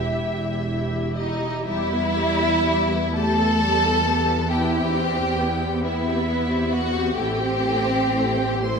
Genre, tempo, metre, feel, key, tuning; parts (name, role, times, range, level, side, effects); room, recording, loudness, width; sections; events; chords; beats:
classical, slow romantic movement for string orchestra; 39-46 BPM (dotted quarters); 6/8; rubato; E minor; A4 = 439 Hz
rich studio violin section; melody; 0.0-8.8 s; D#5 to C6; -29 LUFS; left 2 dB
warm chamber violin section; second line; 0.0-8.8 s; D#4 to C5; -24 LUFS; equal
rich studio viola section; accompaniment; 0.0-8.8 s; G3 to G4; -28 LUFS; left 2 dB
dark studio cello section; bass; 0.2-8.8 s; E2 to E4; -27 LUFS; right 1 dB
rich studio double bass section; bass; 0.2-8.8 s; E1 to E2; -26 LUFS; right 2 dB
wet scoring stage reverb, RT60 1.5 s; -20 LUFS; side -5 dB against mid
0.0-1.6 A section; 1.6-8.8 B section
0.0 Em; 4.5 Cmaj7/E; 7.2 Am7
0.18 | 1.65 3.14 | 4.50 5.83 | 7.17 8.62